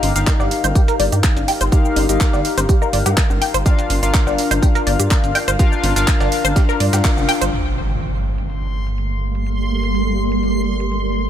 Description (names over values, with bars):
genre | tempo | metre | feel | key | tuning
progressive house | 124 BPM | 4/4 | straight | G minor | A4 = 440 Hz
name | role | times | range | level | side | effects
chorused polysynth | stabs | 0.0-7.5 s | D4 to F5 | -21 LUFS | left 4 dB | cassette tape, sidechain pumping, ping-pong delay
dark detuned saw bass | bass | 0.0-11.3 s | F1 to G2 | -21 LUFS | equal | sidechain pumping
dusty soul sampler-style drum kit | drums | 0.0-7.4 s | hi-hat, snare drum, tambourine | -33 LUFS | left 1 dB | none
house drum kit | drums | 0.0-11.0 s | handclaps, hi-hat, shaker | -24 LUFS | right 2 dB | sidechain pumping on perc, low-pass filter on perc, sidechain pumping on hats, low-pass filter on hats, low-pass filter on snare, low-pass filter on room
congas, bongos and cowbell | percussion | 0.0-7.5 s | none | -30 LUFS | left 2 dB | sidechain pumping on perc
tight sequenced synth | arpeggios | 0.3-7.4 s | G4 to G5 | -23 LUFS | equal | chorus, phaser, cassette tape, sidechain pumping, ping-pong delay
electronic kick drum | drums | 0.3-7.1 s | none | -15 LUFS | equal | none
shimmering ambient pad | sustained chords | 8.8-11.3 s | G3 to Bb3 | -21 LUFS | right 2 dB | chorus, built-in reverb, sidechain pumping
impact | sound effects | 7.5-9.5 s | none | -27 LUFS | right 1 dB | none
backwards swelling texture | texture | 8.5-11.3 s | C6 | -29 LUFS | equal | built-in reverb, sidechain pumping
room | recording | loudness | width
light reverb | none | -15 LUFS | side -10 dB against mid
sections
0.0-7.5 A section; 7.5-11.3 B section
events
filter sweep on synth arpeggio sound 0.0-7.5; band accent 7.0; impact 7.5-9.5; filter sweep on ambient pad 7.5-11.3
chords
0.0 Ebadd9/G; 3.7 Bb/G; 7.5 Gmadd9